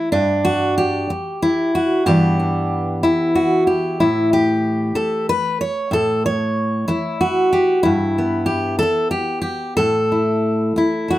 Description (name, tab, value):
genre	folk, solo fingerstyle acoustic guitar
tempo	62 BPM (dotted quarters)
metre	6/8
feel	straight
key	A mixolydian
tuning	A4 = 441 Hz
part	fingerpicked steel-string acoustic guitar	solo	0.0-11.2 s	G2 to C#5	-16 LUFS	equal	none
room	light reverb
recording	close, detailed microphones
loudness	-16 LUFS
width	side -15 dB against mid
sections	0.0-11.2 A section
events	none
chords	0.1 G5; 2.1 Em7/G; 4.0 A; 7.9 G6; 9.8 A5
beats	| 0.13 1.09 | 2.06 3.02 | 3.99 4.96 | 5.92 6.89 | 7.86 8.82 | 9.79 10.76